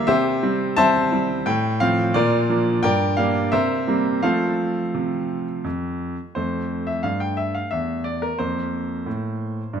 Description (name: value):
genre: classical-period piano sonatina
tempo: 88 BPM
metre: 3/4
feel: rubato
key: F major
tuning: A4 = 440 Hz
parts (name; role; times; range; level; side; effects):
- clear grand piano; solo; 0.0-9.8 s; E2 to A5; -20 LUFS; equal; none
room: moderate recital hall reverb, RT60 1.7 s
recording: close, detailed microphones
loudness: -20 LUFS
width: side -8 dB against mid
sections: 0.0-6.4 A section; 6.4-9.8 A section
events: none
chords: 0.1 C; 1.5 F/A; 2.1 Bb; 2.8 Gm; 3.5 C7; 4.2 F; 8.4 C5/F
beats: | 0.09 0.78 1.47 | 2.15 2.83 3.52 | 4.23 4.94 5.65 | 6.36 7.04 7.72 | 8.39 9.06 9.73